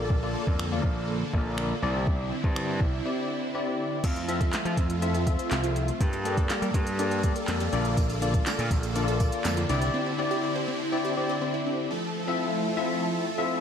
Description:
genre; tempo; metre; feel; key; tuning
dance-pop; 122 BPM; 4/4; straight; F major; A4 = 435 Hz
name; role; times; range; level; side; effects
bell-like tine electric piano; accompaniment; 0.0-13.6 s; Bb3 to E5; -30 LUFS; left 3 dB; ensemble chorus, sidechain pumping
supersaw chords; sustained chords; 0.0-13.6 s; D3 to A4; -31 LUFS; right 1 dB; lush chorus, sidechain pumping
gritty slap bass; bass; 0.0-9.9 s; Bb1 to G3; -29 LUFS; equal; overdrive, sidechain pumping
smooth R&B drum kit; drums; 0.1-9.9 s; crash cymbal, finger snaps, handclaps, hi-hat, kick drum, snare drum; -28 LUFS; equal; none
wide unison pluck; arpeggios; 4.0-11.7 s; Bb3 to C5; -36 LUFS; right 2 dB; sidechain pumping, analog delay
tambourine; percussion; 8.0-9.9 s; none; -43 LUFS; right 8 dB; none
room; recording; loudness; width
moderate plate reverb, RT60 1.8 s, digital ambience; dreamy mix soaked in reverb; -25 LUFS; side -8 dB against mid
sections
0.0-4.0 A section; 4.0-11.9 B section; 11.9-13.6 C section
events
break 3.1-4.0, 9.9-11.9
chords
0.0 Bbmaj7; 1.8 Cadd9; 4.0 Fmaj7; 6.0 Gmadd9; 7.7 Bbmaj7; 9.7 Cadd9; 11.9 Fmaj7

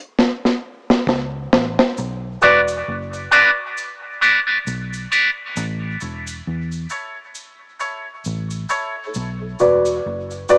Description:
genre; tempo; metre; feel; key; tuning
dub reggae; 67 BPM; 4/4; swing 58% on 16ths; B minor; A4 = 440 Hz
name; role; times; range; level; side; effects
deep reggae drum kit; drums; 0.2-2.0 s; kick drum, snare drum; -15 LUFS; equal; none
vintage muted fingered electric bass; bass; 1.1-10.4 s; E1 to E2; -27 LUFS; equal; none
cabasa; percussion; 2.0-10.6 s; none; -36 LUFS; equal; high-pass filter on perc
electric guitar with an envelope filter; accompaniment; 2.4-5.3 s; F#4 to D5; -15 LUFS; equal; high-pass filter, dub echo
dark upright piano; stabs; 2.4-10.6 s; E4 to D5; -18 LUFS; equal; high-pass filter, dub echo
room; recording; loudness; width
moderate spring reverb, RT60 2.2 s; small speaker sound; -16 LUFS; side -32 dB against mid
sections
0.0-2.0 A section; 2.0-10.6 B section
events
break 0.0-2.0, 5.6-10.6; filter sweep 0.0-9.1; drum fill 0.2-2.0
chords
0.0 A; 2.0 Bm; 5.6 A; 9.1 Bm

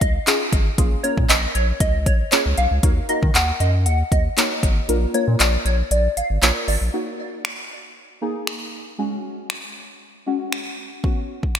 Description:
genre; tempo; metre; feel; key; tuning
dance-pop; 117 BPM; 4/4; straight; Eb minor; A4 = 441 Hz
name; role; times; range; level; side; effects
plucky unison lead; melody; 0.0-6.8 s; Db5 to Gb5; -24 LUFS; equal; wide subtle chorus, digital delay
round analog bass; bass; 0.0-6.9 s; Ab1 to Eb3; -20 LUFS; equal; sidechain pumping
deep house drum kit; drums; 0.0-11.6 s; finger snaps, handclaps, hi-hat, kick drum; -20 LUFS; equal; gated reverb
deep mellow chord stab; accompaniment; 0.3-11.6 s; Ab3 to Db5; -26 LUFS; equal; chorus, phaser, sidechain pumping
room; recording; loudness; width
light reverb, digital ambience; bright 1980s-style digital production; -18 LUFS; side -9 dB against mid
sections
0.0-6.9 A section; 6.9-11.6 B section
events
drop 0.0-6.9; kick muted 4.9-6.9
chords
0.0 Dbadd9; 0.8 Bbm7; 2.8 Ebm; 4.9 Bb; 6.9 Ebm; 9.0 Gbsus2; 11.0 Bsus2

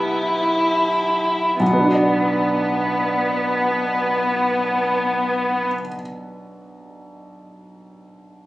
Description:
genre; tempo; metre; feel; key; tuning
classical, slow romantic movement for piano trio; 25-31 BPM (dotted quarters); 6/8; rubato; B minor; A4 = 440 Hz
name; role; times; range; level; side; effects
rich violin; melody; 0.0-5.7 s; B3 to E4; -20 LUFS; left 2 dB; none
rich cello; second line; 0.0-5.7 s; B3; -25 LUFS; right 3 dB; none
clear grand piano; accompaniment; 0.0-8.5 s; B1 to D5; -23 LUFS; right 1 dB; none
room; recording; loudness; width
moderate recital hall reverb, RT60 1.6 s; recorded on a phone in the room, club reverb, compression; -17 LUFS; side -17 dB against mid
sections
0.0-1.6 A section; 1.6-5.6 B section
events
slowing down 0.0-1.6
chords
0.0 Em/B; 1.6 Bm

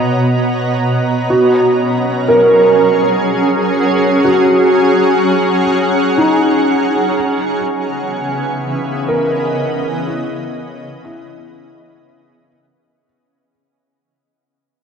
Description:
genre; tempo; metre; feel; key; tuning
ambient; 61 BPM; 3/4; straight; unclear; A4 = 442 Hz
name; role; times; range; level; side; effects
shimmering ambient pad; sustained chords; 0.0-13.1 s; B2 to A#5; -14 LUFS; equal; chorus, built-in reverb, cassette tape
felt-muted upright piano; arpeggios; 1.3-13.5 s; D#4 to A#4; -14 LUFS; right 1 dB; cassette tape, analog delay
room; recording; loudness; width
wet lush hall reverb, RT60 2.5 s; home recording on cassette; -11 LUFS; side -6 dB against mid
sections
0.0-13.0 A section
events
fade-out 5.2-13.0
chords
0.0 Bmaj7; 1.3 F#add9; 7.1 C#m7

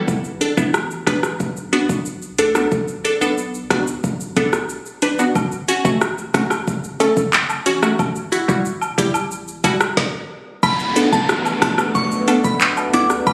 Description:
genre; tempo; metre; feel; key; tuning
dancehall; 91 BPM; 4/4; straight; B minor; A4 = 441 Hz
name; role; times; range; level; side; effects
wavetable chord stab; accompaniment; 0.0-13.1 s; G3 to B4; -22 LUFS; equal; none
lush unison pad; sustained chords; 0.0-0.1, 10.6-13.3 s; A3 to F#4; -26 LUFS; equal; chorus, sidechain pumping
punchy sub bass; bass; 0.0-13.3 s; E1 to D2; -34 LUFS; equal; none
afro-pop drum kit; drums; 0.1-13.3 s; handclaps, hi-hat, kick drum, rim click, shaker, snare drum; -23 LUFS; equal; none
woodblock and cabasa; percussion; 5.4-13.3 s; none; -28 LUFS; equal; none
glassy synth bell; melody; 10.6-13.3 s; A5 to D6; -23 LUFS; equal; chorus, digital delay
downlifter; sound effects; 10.6-13.3 s; none; -28 LUFS; equal; none
room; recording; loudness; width
moderate lush hall reverb, RT60 2.5 s; recorded on a phone in the room, studio reverb; -19 LUFS; mono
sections
0.1-10.6 A section; 10.6-13.3 B section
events
stop 10.0-10.6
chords
0.1 Bm7; 5.4 F#m; 8.0 Emadd9; 10.6 Bm7

